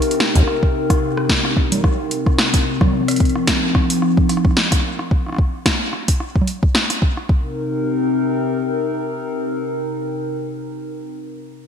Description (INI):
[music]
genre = IDM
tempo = 110 BPM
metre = 4/4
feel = swing 56% on 16ths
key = C minor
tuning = A4 = 439 Hz
[part]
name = warbly tape-like pad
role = sustained chords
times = 0.0-10.8 s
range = C3 to Bb4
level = -20 LUFS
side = left 2 dB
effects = chorus, built-in reverb
[part]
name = electro analog drum machine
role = drums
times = 0.0-7.3 s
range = congas, hi-hat, rim click, snare drum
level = -20 LUFS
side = right 1 dB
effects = gated reverb, digital delay
[part]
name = electronic kick drum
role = drums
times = 0.4-7.4 s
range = none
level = -17 LUFS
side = equal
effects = none
[sound]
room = light reverb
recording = bright 1980s-style digital production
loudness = -16 LUFS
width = side -8 dB against mid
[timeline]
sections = 0.0-7.3 A section; 7.3-11.7 B section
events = filter sweep on ambient pad 0.0-5.1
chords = 0.0 Cm7; 2.9 F7sus4; 7.3 Cm7